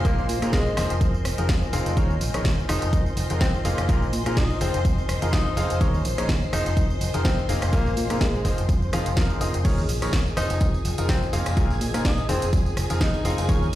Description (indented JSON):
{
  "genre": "piano house",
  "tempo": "125 BPM",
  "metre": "4/4",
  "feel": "swing 55% on 16ths",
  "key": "F minor",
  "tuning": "A4 = 440 Hz",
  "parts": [
    { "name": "warm tenor saxophone", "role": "melody", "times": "0.0-13.4 s", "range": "Ab3 to Eb4", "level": "-31 LUFS", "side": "left 1 dB", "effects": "digital delay" },
    { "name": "string machine, violins", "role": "sustained chords", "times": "0.0-13.8 s", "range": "Ab4 to C6", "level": "-35 LUFS", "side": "left 1 dB", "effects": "ensemble chorus, sidechain pumping" },
    { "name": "clear concert grand piano", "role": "riff", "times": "0.0-13.6 s", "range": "Bb2 to F5", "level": "-30 LUFS", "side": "left 1 dB", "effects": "sidechain pumping, digital delay" },
    { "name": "fingered electric bass", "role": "bass", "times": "0.0-13.8 s", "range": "F1 to Bb2", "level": "-26 LUFS", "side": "equal", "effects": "sidechain pumping" },
    { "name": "electronic kick drum", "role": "drums", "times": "0.0-13.6 s", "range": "none", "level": "-22 LUFS", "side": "equal", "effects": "none" },
    { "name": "warbly tape-like pad", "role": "texture", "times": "0.0-13.8 s", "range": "F4 to Ab5", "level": "-35 LUFS", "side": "left 1 dB", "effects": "chorus, built-in reverb, sidechain pumping" },
    { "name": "house drum kit", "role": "drums", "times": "0.1-13.8 s", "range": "crash cymbal, hi-hat, rim click, snare drum, tambourine", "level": "-32 LUFS", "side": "right 1 dB", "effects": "none" },
    { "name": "tambourine", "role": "percussion", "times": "9.7-13.7 s", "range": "none", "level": "-43 LUFS", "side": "right 3 dB", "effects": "none" }
  ],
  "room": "digital ambience",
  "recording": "played on a big sound system in a bare room, large studio reverb",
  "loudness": "-20 LUFS",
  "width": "side -14 dB against mid",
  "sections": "0.0-13.8 A section",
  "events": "none",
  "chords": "0.0 Bb9sus4; 0.8 Fm7; 2.0 Eb7sus4; 2.7 Fm7; 3.9 Bb9sus4; 4.6 Fm7; 5.8 Eb7sus4; 6.5 Fm7; 7.7 Bb9sus4; 8.4 Fm7; 9.6 Eb7sus4; 10.4 Fm7; 11.6 Bb9sus4; 12.3 Fm7"
}